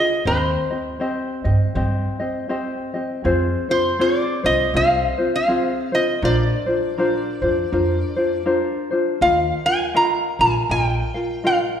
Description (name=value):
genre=Hawaiian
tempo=80 BPM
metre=4/4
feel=swing 60% on 8ths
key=Eb major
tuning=A4 = 440 Hz
part: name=metal-body resonator slide guitar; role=melody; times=0.0-11.6 s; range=C5 to Bb5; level=-20 LUFS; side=equal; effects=none
part: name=tenor ukulele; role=accompaniment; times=0.0-11.8 s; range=C4 to F5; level=-21 LUFS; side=left 1 dB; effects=none
part: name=upright bass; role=bass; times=0.3-11.0 s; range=Bb1 to G2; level=-24 LUFS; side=right 1 dB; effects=none
room=wet recital hall reverb, RT60 1.7 s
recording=recorded in a church or concert hall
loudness=-18 LUFS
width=side -8 dB against mid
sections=0.0-11.8 A section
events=none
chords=0.3 Cm/Eb; 3.2 Fm; 6.2 Bbadd9; 9.2 Ebsus2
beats=| 0.26 1.01 1.75 2.50 | 3.24 3.99 4.74 5.48 | 6.23 6.97 7.72 8.46 | 9.21 9.95 10.69 11.43